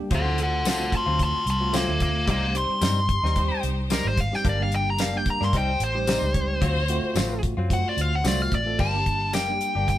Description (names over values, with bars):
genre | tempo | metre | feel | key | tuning
straight-eighth soul blues | 111 BPM | 4/4 | swing 54% on 16ths | G harmonic minor | A4 = 441 Hz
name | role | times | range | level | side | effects
tine electric piano | accompaniment | 0.0-10.0 s | G3 to A4 | -32 LUFS | right 1 dB | fast stereo tremolo
dark smooth lead guitar | melody | 0.1-10.0 s | A4 to D6 | -26 LUFS | left 1 dB | overdrive
bright studio string section | sustained chords | 0.1-8.2 s | F#3 to C5 | -36 LUFS | left 2 dB | none
direct-recorded clean electric guitar | stabs | 0.1-9.9 s | G2 to G4 | -32 LUFS | left 4 dB | none
vintage muted fingered electric bass | bass | 0.1-10.0 s | F#1 to G2 | -26 LUFS | equal | none
damped 70s drum kit | drums | 0.1-10.0 s | crash cymbal, hi-hat, kick drum, snare drum, tambourine | -27 LUFS | equal | none
room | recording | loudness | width
moderate studio reverb, RT60 0.8 s | band playing live in one room | -21 LUFS | side -13 dB against mid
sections
0.0-8.8 A section; 8.8-10.0 B section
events
lead electric guitar solo 0.0-8.8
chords
0.1 D7#9; 2.3 Cm; 4.4 Gm; 5.5 Cm; 6.6 D7#9; 8.8 Gm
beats
| 0.11 0.65 1.19 1.74 | 2.28 2.82 3.36 3.90 | 4.45 4.99 5.53 6.08 | 6.62 7.16 7.70 8.25 | 8.79 9.34 9.88